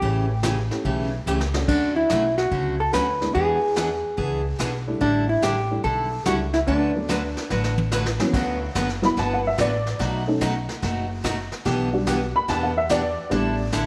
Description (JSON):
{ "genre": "country, western swing", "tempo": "144 BPM", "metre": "4/4", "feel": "swing 67% on 8ths", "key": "D major", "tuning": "A4 = 439 Hz", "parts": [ { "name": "vintage hollow-body jazz guitar", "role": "melody", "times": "0.0-7.9 s", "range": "D4 to B4", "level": "-25 LUFS", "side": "equal", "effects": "none" }, { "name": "picked steel-string acoustic guitar", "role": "accompaniment", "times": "0.0-13.8 s", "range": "B2 to B4", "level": "-29 LUFS", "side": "equal", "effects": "none" }, { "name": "upright bass", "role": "bass", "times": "0.0-13.9 s", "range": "F#1 to E2", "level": "-30 LUFS", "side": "equal", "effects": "none" }, { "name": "vintage brush drum kit", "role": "drums", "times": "0.0-13.9 s", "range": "brushed snare drum, crash cymbal, hi-hat, kick drum, snare drum, toms", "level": "-33 LUFS", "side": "equal", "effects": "none" }, { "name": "honky-tonk upright piano", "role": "accompaniment", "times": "0.7-13.7 s", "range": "E3 to B5", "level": "-27 LUFS", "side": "equal", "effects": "none" } ], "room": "moderate echo chamber reverb, RT60 1.6 s", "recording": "none", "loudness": "-23 LUFS", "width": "mono", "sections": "0.0-8.3 A section; 8.3-13.9 B section", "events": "drum fill 1.3-1.7, 7.5-8.3; honky-tonk piano solo 8.3-13.9", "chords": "0.0 A7; 1.7 Dmaj7; 3.4 E7; 5.0 A7sus4; 6.7 D6; 8.3 D69; 10.0 B7; 11.7 Em7/B; 13.3 A7sus4", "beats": "| 0.02 0.44 0.85 1.27 | 1.69 2.10 2.52 2.94 | 3.35 3.77 4.18 4.60 | 5.01 5.43 5.84 6.26 | 6.67 7.09 7.51 7.92 | 8.34 8.75 9.17 9.58 | 10.00 10.41 10.82 11.24 | 11.65 12.07 12.48 12.90 | 13.31 13.73" }